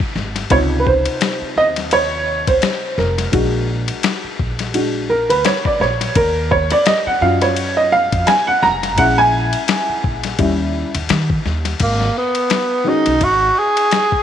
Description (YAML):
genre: hip hop, jazz-hop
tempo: 85 BPM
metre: 4/4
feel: swing 57% on 16ths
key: unclear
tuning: A4 = 440 Hz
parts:
  - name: dusty soul sampler-style drum kit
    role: drums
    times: 0.0-14.2 s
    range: crash cymbal, hi-hat, kick drum, ride cymbal, snare drum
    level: -21 LUFS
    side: left 4 dB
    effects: none
  - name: upright bass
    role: bass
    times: 0.2-13.5 s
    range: E#1 to D#3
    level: -21 LUFS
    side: equal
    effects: none
  - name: dark upright piano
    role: accompaniment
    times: 0.5-13.1 s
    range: B#2 to A#5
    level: -16 LUFS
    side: right 1 dB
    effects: none
  - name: breathy tenor saxophone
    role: melody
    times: 11.8-14.2 s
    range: A#3 to G#4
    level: -14 LUFS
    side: right 1 dB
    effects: none
room: moderate plate reverb, RT60 3.8 s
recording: 1960s-style stereo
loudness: -14 LUFS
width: side -9 dB against mid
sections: 0.0-11.8 A section; 11.8-14.2 B section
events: upright piano solo 0.0-11.8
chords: 0.0 N.C.; 0.5 C#maj9; 3.3 A#aug7; 6.2 D#m9; 9.0 A#m7b5; 10.4 D#7b9; 11.8 G#m7